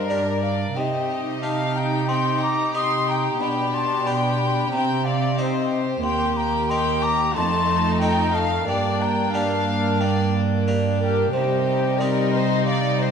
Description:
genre	classical, baroque-style concerto movement with solo episodes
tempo	91 BPM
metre	4/4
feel	straight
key	unclear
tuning	A4 = 440 Hz
part	mellow baroque flute	melody	0.0-13.1 s	Bb4 to Eb6	-25 LUFS	left 1 dB	none
part	warm chamber violin section	melody	0.0-13.1 s	D4 to Bb4	-30 LUFS	left 6 dB	none
part	warm chamber violin section	second line	0.0-13.1 s	G4 to C6	-27 LUFS	left 2 dB	none
part	dark chamber viola section	accompaniment	0.0-13.1 s	G3 to Eb4	-27 LUFS	left 3 dB	none
part	harpsichord	accompaniment	0.0-13.1 s	Eb2 to C5	-30 LUFS	right 1 dB	none
part	dark chamber cello section	bass	0.0-13.1 s	Eb2 to C3	-25 LUFS	right 6 dB	none
room	moderate concert hall reverb, RT60 2.0 s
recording	none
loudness	-19 LUFS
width	side -7 dB against mid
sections	0.0-13.1 A section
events	none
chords	0.0 Gm; 0.8 Cm; 3.4 G/B; 4.7 Cm; 6.0 Eb6; 7.4 F7; 8.7 Gm; 11.3 Cm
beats	0.10 | 0.76 1.43 2.09 2.75 | 3.41 4.07 4.72 5.39 | 6.04 6.70 7.36 8.02 | 8.69 9.35 10.01 10.67 | 11.34 12.00 12.66

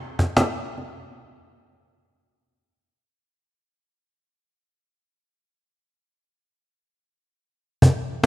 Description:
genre	world meditative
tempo	free time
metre	none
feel	none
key	none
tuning	none
part	cajon	percussion	0.2-0.9, 7.8-8.3 s	none	-19 LUFS	equal	none
room	moderate concert hall reverb, RT60 2.0 s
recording	none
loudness	-18 LUFS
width	side -17 dB against mid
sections	0.0-1.2 A section; 1.2-8.3 B section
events	none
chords	none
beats	free time

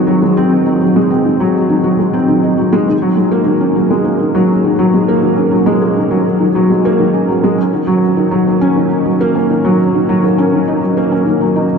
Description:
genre	electronica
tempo	102 BPM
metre	4/4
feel	straight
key	Gb lydian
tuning	A4 = 439 Hz
part	felt-muted upright piano	solo	0.0-11.8 s	Eb3 to Eb4	-10 LUFS	equal	ensemble chorus, analog delay
room	wet huge ambient reverb, RT60 7.7 s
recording	dreamy mix soaked in reverb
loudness	-10 LUFS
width	side -6 dB against mid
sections	0.0-11.8 A section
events	none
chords	none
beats	| 0.53 1.12 1.70 2.29 | 2.88 3.47 4.06 4.64 | 5.23 5.82 6.41 7.00 | 7.59 8.17 8.76 9.35 | 9.94 10.53 11.12 11.70

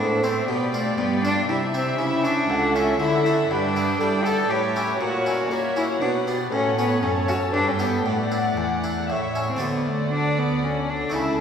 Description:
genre	classical, baroque-style concerto movement with solo episodes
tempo	119 BPM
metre	3/4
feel	straight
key	G major, D major from 3.5 s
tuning	A4 = 440 Hz
part	rich cello	melody	0.0-11.4 s	A3 to A4	-24 LUFS	left 1 dB	none
part	rich chamber violin section	melody	0.0-11.4 s	D5 to A5	-35 LUFS	left 3 dB	none
part	dark studio violin section	second line	0.0-11.4 s	B4 to F#5	-28 LUFS	left 2 dB	none
part	dark chamber viola section	accompaniment	0.0-11.4 s	F#4 to D5	-28 LUFS	right 1 dB	none
part	harpsichord	accompaniment	0.0-11.4 s	C#2 to G4	-30 LUFS	equal	none
part	rich chamber cello section	bass	0.0-11.4 s	C#2 to A#3	-28 LUFS	right 2 dB	none
part	warm studio double bass section	bass	9.6-11.4 s	C#2 to D2	-34 LUFS	right 3 dB	none
room	wet church reverb, RT60 2.5 s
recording	recorded in a church or concert hall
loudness	-20 LUFS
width	side -7 dB against mid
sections	0.0-9.6 A section; 9.6-11.4 A section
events	none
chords	0.0 Am; 0.5 G7/B; 1.5 C; 2.0 A7/C#; 3.0 D; 3.5 Em7/G; 4.5 A7; 5.0 F#7/A#; 6.0 Bm; 6.5 F#m/A; 7.5 Em/G; 8.1 Asus4; 9.1 A; 9.6 D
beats	| 0.49 0.99 1.49 | 2.00 2.50 3.01 | 3.51 4.01 4.51 | 5.01 5.51 6.01 | 6.52 7.03 7.54 | 8.06 8.58 9.10 | 9.62 10.13 10.64 | 11.14

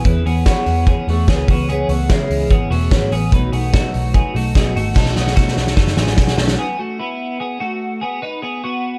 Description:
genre	jangly indie pop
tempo	147 BPM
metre	4/4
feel	straight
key	unclear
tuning	A4 = 440 Hz
part	fingerpicked twelve-string acoustic guitar	accompaniment	0.0-6.6 s	B2 to G#4	-25 LUFS	equal	none
part	twelve-string electric guitar	arpeggios	0.0-9.0 s	G#3 to B4	-26 LUFS	equal	lush chorus
part	vintage muted picked electric bass	bass	0.0-6.6 s	E1 to E3	-22 LUFS	equal	none
part	loose indie drum kit	drums	0.1-6.6 s	crash cymbal, hi-hat, kick drum, snare drum	-19 LUFS	equal	none
part	tambourine	percussion	5.0-6.5 s	none	-44 LUFS	equal	none
room	little or no reverb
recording	dark, warm production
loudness	-17 LUFS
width	mono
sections	0.0-5.0 A section; 5.0-6.6 B section; 6.6-9.0 C section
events	drum fill 5.0-6.6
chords	0.0 E6; 1.5 C#m7; 3.3 B7; 6.6 Esus2; 8.0 B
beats	| 0.04 0.46 0.87 1.28 | 1.69 2.10 2.50 2.91 | 3.32 3.73 4.14 4.55 | 4.96 5.37 5.78 6.18 | 6.59 7.00 7.41 7.82 | 8.22 8.63

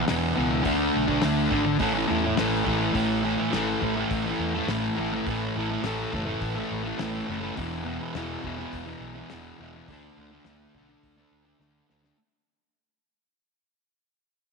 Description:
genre	garage rock duo or trio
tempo	104 BPM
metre	4/4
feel	straight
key	unclear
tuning	A4 = 440 Hz
part	fuzz guitar	riff	0.0-12.2 s	E2 to D4	-25 LUFS	equal	distortion
part	fingered electric bass	bass	0.0-12.1 s	E1 to E2	-34 LUFS	equal	none
part	cloth-damped thuddy drum kit	drums	0.1-12.2 s	hi-hat, kick drum, snare drum	-34 LUFS	left 4 dB	none
room	moderate echo chamber reverb, RT60 2.2 s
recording	1960s-style stereo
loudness	-24 LUFS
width	side -4 dB against mid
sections	0.0-3.0 A section; 3.0-12.2 B section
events	fade-out 3.0-12.2; drum fill 11.6-12.2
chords	0.0 E5; 0.7 D5; 1.8 A5; 7.6 E5; 9.9 D5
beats	0.09 | 0.66 1.24 1.81 2.38 | 2.96 3.54 4.11 4.69 | 5.27 5.84 6.42 7.00 | 7.57 8.15 8.73 9.30 | 9.88 10.46 11.03 11.61

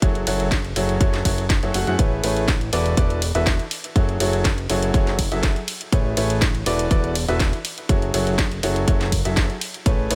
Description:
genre	piano house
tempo	122 BPM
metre	4/4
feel	straight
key	F# minor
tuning	A4 = 439 Hz
part	clear upright piano	riff	0.0-10.2 s	E3 to F#5	-26 LUFS	equal	sidechain pumping, delay
part	fat analog bass	bass	0.0-10.2 s	E1 to F#2	-27 LUFS	equal	sidechain pumping
part	electronic kick drum	drums	0.0-10.0 s	none	-22 LUFS	equal	none
part	house drum kit	drums	0.0-10.2 s	hi-hat, ride cymbal, snare drum	-29 LUFS	equal	none
room	little or no reverb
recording	none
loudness	-21 LUFS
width	mono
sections	0.0-10.2 A section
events	none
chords	0.0 F#m9; 2.0 Amaj9; 2.7 E9sus4; 4.0 F#m9; 5.9 Amaj9; 6.7 E9sus4; 7.9 F#m9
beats	| 0.02 0.52 1.01 1.50 | 1.99 2.48 2.97 3.46 | 3.96 4.45 4.94 5.43 | 5.92 6.42 6.91 7.40 | 7.89 8.38 8.88 9.37 | 9.86

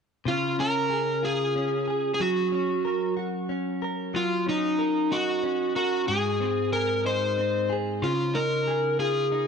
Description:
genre	pop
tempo	62 BPM (dotted quarters)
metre	6/8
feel	straight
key	Db major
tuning	A4 = 436 Hz
part	overdriven slide guitar	melody	0.3-9.5 s	Eb4 to C5	-25 LUFS	equal	tape echo
part	direct-recorded clean electric guitar	accompaniment	0.3-9.5 s	Ab2 to Bb4	-29 LUFS	equal	double-tracked left and right
room	moderate echo chamber reverb, RT60 1.6 s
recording	dark, warm production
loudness	-24 LUFS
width	side -6 dB against mid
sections	0.3-9.5 A section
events	none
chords	0.3 Db; 2.2 Gb; 4.1 Ebm7/Gb; 6.1 Ab; 8.0 Dbadd9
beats	| 0.27 1.24 | 2.21 3.17 | 4.14 5.12 | 6.08 7.05 | 8.03 8.99

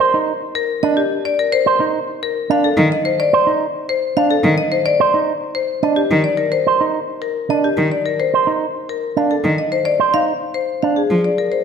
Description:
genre	classical, minimalist pattern music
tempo	108 BPM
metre	3/4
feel	straight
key	C dorian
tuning	A4 = 440 Hz
part	marimba with medium hard mallets	melody	0.0-11.6 s	G4 to F5	-18 LUFS	left 5 dB	none
part	electric guitar with an envelope filter	arpeggios	0.0-11.0 s	D4 to C5	-19 LUFS	right 6 dB	none
part	rich cello	accompaniment	2.8-11.2 s	Eb3 to F3	-18 LUFS	equal	none
room	wet recital hall reverb, RT60 1.5 s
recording	none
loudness	-15 LUFS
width	side -6 dB against mid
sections	0.0-11.6 A section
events	none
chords	0.0 Cm7; 2.4 F7(no3) (rootless); 10.7 Bb (rootless)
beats	0.14 | 0.69 1.25 1.80 | 2.36 2.92 3.47 | 4.03 4.58 5.14 | 5.69 6.25 6.80 | 7.36 7.92 8.47 | 9.03 9.58 10.14 | 10.69 11.25

